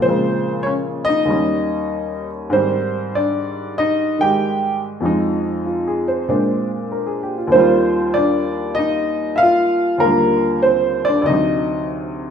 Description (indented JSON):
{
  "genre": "solo jazz",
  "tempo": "96 BPM",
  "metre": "4/4",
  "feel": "swing 68% on 8ths",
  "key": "Eb major",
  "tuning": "A4 = 438 Hz",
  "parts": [
    { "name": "warm upright piano", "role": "solo", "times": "0.0-12.3 s", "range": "D2 to G5", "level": "-16 LUFS", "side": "equal", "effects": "none" }
  ],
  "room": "wet large studio reverb, RT60 1.3 s",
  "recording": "minimal, uncompressed stereo recording",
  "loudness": "-16 LUFS",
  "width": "side -7 dB against mid",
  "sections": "0.0-12.3 A section",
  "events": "none",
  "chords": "0.0 Bbm7; 1.3 Eb7; 2.5 Abmaj7; 5.0 Fm7; 6.3 Bb9; 7.5 Ebmaj9; 11.3 D7b9"
}